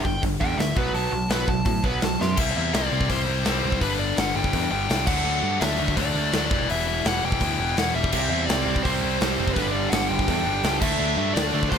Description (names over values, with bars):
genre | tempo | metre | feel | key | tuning
punk rock | 167 BPM | 4/4 | straight | unclear | A4 = 440 Hz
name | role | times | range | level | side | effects
dark smooth lead guitar | melody | 0.0-11.8 s | B4 to C6 | -28 LUFS | equal | overdrive, ping-pong delay
overdriven electric guitar | riff | 0.0-11.8 s | G2 to E4 | -30 LUFS | left 16 dB | none
overdriven electric guitar | riff | 0.0-2.4, 8.1-11.8 s | G2 to D4 | -29 LUFS | right 14 dB | none
big rock drum kit | drums | 0.0-11.8 s | crash cymbal, hi-hat, kick drum, snare drum | -26 LUFS | equal | none
growling picked electric bass | bass | 0.1-11.8 s | E1 to A2 | -28 LUFS | equal | overdrive
distorted electric guitar | riff | 2.4-11.8 s | E2 to D4 | -29 LUFS | left 1 dB | overdrive
room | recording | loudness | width
little or no reverb | none | -21 LUFS | side -7 dB against mid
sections
0.0-2.4 A section; 2.4-11.8 B section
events
lead electric guitar solo 0.0-2.4; drum fill 2.2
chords
0.0 G5; 0.8 B5; 2.4 C; 3.8 G; 5.1 D; 6.5 Em; 8.1 C; 9.6 G; 10.8 D